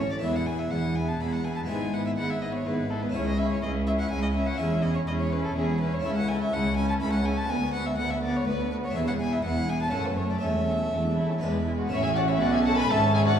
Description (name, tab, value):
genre	classical, baroque-style concerto movement with solo episodes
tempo	124 BPM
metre	3/4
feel	straight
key	E major, A major from 6.0 s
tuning	A4 = 438 Hz
part	warm violin	melody	0.0-13.4 s	G#4 to B5	-31 LUFS	left 1 dB	none
part	dark chamber viola section	accompaniment	0.0-13.4 s	G#3 to C#4	-32 LUFS	right 1 dB	none
part	harpsichord	accompaniment	0.0-13.4 s	C#2 to B4	-33 LUFS	left 1 dB	none
part	rich chamber double bass section	bass	0.0-13.4 s	E1 to D2	-31 LUFS	right 1 dB	none
part	warm chamber cello section	bass	0.0-13.4 s	C#2 to B2	-30 LUFS	right 1 dB	none
part	rich chamber violin section	melody	0.2-13.4 s	F#4 to B5	-35 LUFS	left 3 dB	none
part	warm chamber violin section	second line	0.2-13.4 s	B3 to B4	-36 LUFS	left 1 dB	none
room	wet recital hall reverb, RT60 1.8 s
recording	heard from further back in the room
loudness	-24 LUFS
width	side -8 dB against mid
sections	0.2-11.9 A section; 11.9-13.4 B section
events	none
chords	0.2 E; 1.7 E/G#; 3.1 C#m; 4.6 C#m/E; 6.0 A/C#; 7.5 Bm/D; 8.9 E; 9.9 F#m; 10.4 A/E; 11.4 E; 11.9 A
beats	| 0.23 0.72 1.20 | 1.69 2.17 2.66 | 3.14 3.63 4.11 | 4.59 5.08 5.56 | 6.05 6.53 7.01 | 7.49 7.97 8.46 | 8.94 9.43 9.92 | 10.41 10.92 11.42 | 11.91 12.40 12.89 | 13.38